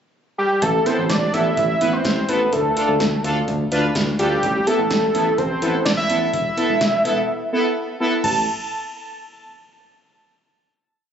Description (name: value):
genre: synth-pop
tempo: 126 BPM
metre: 4/4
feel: straight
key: A minor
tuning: A4 = 441 Hz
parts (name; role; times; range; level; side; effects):
- fat analog lead; melody; 0.4-8.5 s; G4 to A5; -20 LUFS; right 1 dB; chorus, ping-pong delay
- smooth synth bass; bass; 0.6-8.5 s; E1 to D2; -24 LUFS; equal; none
- electro analog drum machine; drums; 0.6-8.4 s; crash cymbal, hi-hat, kick drum, snare drum; -26 LUFS; equal; overdrive
- analog synth brass; accompaniment; 0.9-8.1 s; B3 to B4; -22 LUFS; equal; chorus
room: moderate plate reverb, RT60 2.0 s, digital ambience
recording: recorded on a phone in the room, club reverb, compression, nothing above 7.9 kHz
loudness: -17 LUFS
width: side -8 dB against mid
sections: 0.0-0.6 pickup bar; 0.6-8.2 verse; 8.2-10.1 final note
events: break 7.3-8.2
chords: 0.0 N.C.; 0.6 Asus2; 2.5 Dm; 4.4 Asus2; 6.3 Esus4; 8.2 N.C.